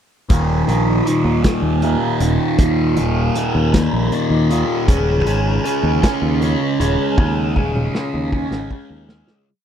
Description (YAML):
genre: psychedelic rock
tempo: 52 BPM (dotted quarters)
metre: 6/8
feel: straight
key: unclear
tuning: A4 = 440 Hz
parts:
  - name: fuzz guitar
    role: riff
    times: 0.3-9.5 s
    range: Eb2 to Db4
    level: -18 LUFS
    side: equal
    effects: distortion, phaser
  - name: growling fingered electric bass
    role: bass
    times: 0.3-9.2 s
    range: Eb1 to Eb2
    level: -19 LUFS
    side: equal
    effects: overdrive
  - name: vintage drum kit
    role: drums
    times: 0.3-9.5 s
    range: hi-hat, kick drum, snare drum, toms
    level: -18 LUFS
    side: equal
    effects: none
room: little or no reverb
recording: none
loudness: -15 LUFS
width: side -9 dB against mid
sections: 0.3-9.5 groove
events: fade-out 7.2-9.5; drum fill 7.2-9.5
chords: 0.3 Eb5; 4.9 Db5/Eb